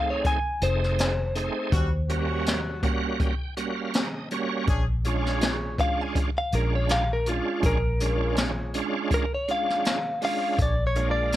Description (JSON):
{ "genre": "straight-eighth soul blues", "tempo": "81 BPM", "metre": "4/4", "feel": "swing 55% on 16ths", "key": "unclear", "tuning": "A4 = 440 Hz", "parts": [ { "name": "direct-recorded clean electric guitar", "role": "melody", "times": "0.0-11.4 s", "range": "F4 to G#5", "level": "-27 LUFS", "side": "left 1 dB", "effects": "none" }, { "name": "bright tonewheel organ", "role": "accompaniment", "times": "0.0-11.4 s", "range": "G3 to G5", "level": "-29 LUFS", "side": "right 4 dB", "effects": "slow rotary speaker, chorus vibrato" }, { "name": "jazz brush drum kit", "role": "drums", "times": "0.2-11.4 s", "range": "hi-hat, kick drum, snare drum", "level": "-28 LUFS", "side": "equal", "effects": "none" }, { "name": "vintage muted fingered electric bass", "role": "bass", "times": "0.6-11.4 s", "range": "F1 to Eb2", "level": "-26 LUFS", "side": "equal", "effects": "none" }, { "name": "warm horn section", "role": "sustained chords", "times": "1.7-11.4 s", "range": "G3 to D5", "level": "-34 LUFS", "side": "left 1 dB", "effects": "none" } ], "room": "light reverb", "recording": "none", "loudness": "-23 LUFS", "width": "side -14 dB against mid", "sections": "0.0-10.6 A section", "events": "clean electric guitar solo 0.0-10.6; tonewheel organ fill 2.5-4.7", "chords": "0.0 F7#9; 1.7 Eb7#9; 4.7 Bb7#9" }